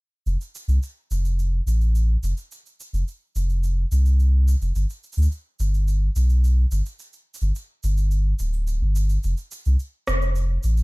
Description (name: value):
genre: folktronica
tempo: 107 BPM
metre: 4/4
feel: straight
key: F lydian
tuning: A4 = 443 Hz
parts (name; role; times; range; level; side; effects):
- warm sub bass; bass; 0.3-10.8 s; D1 to D2; -19 LUFS; equal; none
- electronic shaker and rim click; drums; 0.3-10.8 s; none; -36 LUFS; right 1 dB; overdrive
room: little or no reverb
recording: dark, warm production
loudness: -20 LUFS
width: side -25 dB against mid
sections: 0.3-10.8 A section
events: filter sweep on sub bass 0.3-10.8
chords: none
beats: | 0.27 0.83 1.39 1.95 | 2.51 3.07 3.63 4.19 | 4.75 5.32 5.88 6.44 | 7.00 7.56 8.12 8.68 | 9.24 9.80 10.36